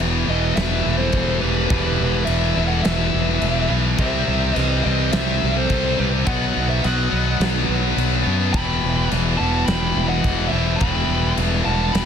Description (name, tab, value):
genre	heavy metal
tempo	105 BPM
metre	4/4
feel	straight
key	E harmonic minor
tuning	A4 = 440 Hz
part	clear studio string section	sustained chords	0.0-12.1 s	B2 to C5	-33 LUFS	right 1 dB	none
part	heavy high-gain guitar	riff	0.0-12.1 s	E2 to C4	-24 LUFS	left 17 dB	distortion
part	tight distorted guitar	riff	0.0-12.1 s	E2 to C4	-26 LUFS	right 15 dB	distortion
part	fuzz fingered electric bass	bass	0.0-12.1 s	E1 to F#2	-22 LUFS	equal	overdrive
part	big rock drum kit	drums	0.0-12.1 s	crash cymbal, kick drum, snare drum	-25 LUFS	equal	none
part	bluesy overdriven lead guitar	melody	0.3-12.1 s	B4 to B5	-26 LUFS	left 1 dB	distortion, ping-pong delay
part	high-gain lead guitar	second line	0.3-12.1 s	G4 to G5	-32 LUFS	right 4 dB	distortion
room	little or no reverb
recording	dense, heavily limited modern master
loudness	-17 LUFS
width	side -8 dB against mid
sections	0.0-12.1 A section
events	half time 0.0-12.1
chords	0.0 Em; 4.0 C; 6.3 B; 8.5 Em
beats	0.56 1.14 | 1.71 2.28 2.85 3.42 | 3.99 4.56 5.13 5.70 | 6.27 6.84 7.41 7.98 | 8.55 9.12 9.68 10.25 | 10.82 11.38 11.95